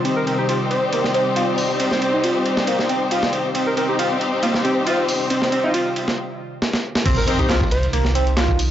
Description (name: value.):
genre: breakbeat, breaks.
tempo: 137 BPM.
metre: 4/4.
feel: straight.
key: C minor.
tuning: A4 = 440 Hz.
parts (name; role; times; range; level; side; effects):
warbly tape-like pad; sustained chords; 0.0-8.7 s; C3 to D5; -28 LUFS; right 1 dB; chorus, built-in reverb, phaser, sidechain pumping.
overdriven synth lead; riff; 0.0-8.5 s; Bb3 to F4; -23 LUFS; right 1 dB; distortion, phaser, tape echo.
warm studio string section; stabs; 0.0-7.4 s; C4 to C5; -22 LUFS; left 3 dB; low-pass filter, tape echo.
breakbeat sampler-style drum kit; drums; 0.1-8.7 s; crash cymbal, hi-hat, kick drum, ride cymbal, snare drum; -24 LUFS; right 1 dB; high-pass filter on cymbals, high-pass filter on snare, high-pass filter on hats, high-pass filter on kick, high-pass filter on room.
breathy alto saxophone; melody; 0.2-7.9 s; F4 to C5; -27 LUFS; right 1 dB; telephone sound, tape echo.
saturated sub bass; bass; 7.1-8.7 s; C2; -20 LUFS; equal; none.
punchy analog drum machine; drums; 7.1-8.7 s; handclaps, hi-hat; -31 LUFS; right 1 dB; none.
impact; sound effects; 7.1-8.7 s; none; -26 LUFS; right 1 dB; none.
room: light reverb.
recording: dry, gritty hardware recording, nothing above 7.7 kHz.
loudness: -17 LUFS.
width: side -11 dB against mid.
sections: 0.0-7.1 A section; 7.1-8.7 B section.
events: filter sweep on analog synth lead 0.0-7.1; break 6.2-7.1; drum fill 6.6-7.1; drop 7.1-8.7; impact 7.1-8.7.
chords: 0.0 Cm.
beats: | 0.05 0.49 0.93 1.36 | 1.80 2.24 2.68 3.12 | 3.55 3.99 4.43 4.87 | 5.31 5.74 6.18 6.62 | 7.06 7.50 7.93 8.37.